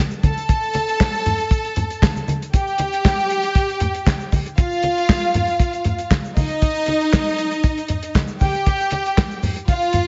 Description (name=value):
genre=disco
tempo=117 BPM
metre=4/4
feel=straight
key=unclear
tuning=A4 = 440 Hz
part: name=warm soul drum kit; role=drums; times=0.1-10.1 s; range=handclaps, hi-hat, kick drum, snare drum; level=-21 LUFS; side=equal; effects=gated reverb
part: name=egg shaker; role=percussion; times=0.1-10.1 s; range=none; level=-48 LUFS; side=equal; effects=none
part: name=clear studio string section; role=second line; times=0.2-10.1 s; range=Eb4 to A5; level=-24 LUFS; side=equal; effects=none
part: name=congas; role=percussion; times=0.2-10.1 s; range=none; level=-26 LUFS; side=equal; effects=none
room=light reverb, small room ambience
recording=nothing above 7.7 kHz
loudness=-20 LUFS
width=mono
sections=0.0-10.1 A section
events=none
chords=none